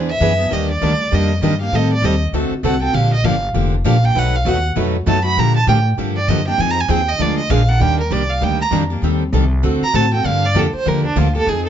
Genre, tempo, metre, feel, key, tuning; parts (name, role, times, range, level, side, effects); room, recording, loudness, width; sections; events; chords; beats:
acoustic string swing (jazz manouche); 197 BPM; 4/4; swing 59% on 8ths; A4 = 440 Hz
picked plugged-in steel-string acoustic guitar; accompaniment; 0.0-11.7 s; B2 to B4; -23 LUFS; right 7 dB
picked steel-string acoustic guitar; accompaniment; 0.0-11.7 s; B2 to Bb4; -21 LUFS; left 6 dB
upright bass; bass; 0.0-11.7 s; F1 to Bb2; -18 LUFS; left 1 dB
warm violin; melody; 0.1-11.7 s; D4 to B5; -20 LUFS; right 3 dB
moderate club reverb, RT60 0.8 s; nothing above 7.6 kHz; -14 LUFS; side -9 dB against mid
0.0-7.8 A section; 7.8-11.7 A section
violin solo 0.0-11.7
0.0 E9; 0.5 Ebmaj9; 1.7 Am7b5; 2.3 D7; 2.9 Gm7; 4.2 B7; 5.4 Bb6; 6.6 Fm7; 7.2 Bb7; 7.8 Ebmaj7; 9.0 Am7b5; 9.6 D7; 10.2 Gm7
0.21 | 0.51 0.81 1.12 1.42 | 1.73 2.03 2.33 2.64 | 2.94 3.24 3.55 3.85 | 4.16 4.46 4.76 5.07 | 5.37 5.68 5.98 6.29 | 6.59 6.89 7.20 7.50 | 7.81 8.11 8.42 8.72 | 9.03 9.33 9.63 9.94 | 10.24 10.55 10.85 11.16 | 11.46